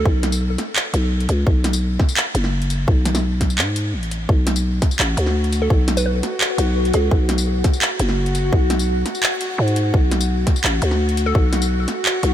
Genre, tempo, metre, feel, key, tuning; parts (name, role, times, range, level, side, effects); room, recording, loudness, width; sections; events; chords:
half-time drum and bass; 170 BPM; 4/4; half-time; B dorian; A4 = 441 Hz
hollow square pluck; melody; 0.0-0.2, 5.6-7.3, 11.3-11.5 s; A4 to B4; -28 LUFS; right 2 dB; chorus, ping-pong delay
growling 808-style bass; bass; 0.0-12.3 s; F#1 to G#2; -19 LUFS; equal
electronic kick drum; drums; 0.1-11.4 s; -17 LUFS; equal
drum and bass drum kit; drums; 0.2-12.3 s; handclaps, hi-hat, snare drum, tambourine; -23 LUFS; equal
backwards swelling texture; texture; 5.1-12.3 s; F#4; -26 LUFS; left 2 dB; built-in reverb
light reverb; -16 LUFS; side -11 dB against mid
0.0-12.3 A section
0.0 B5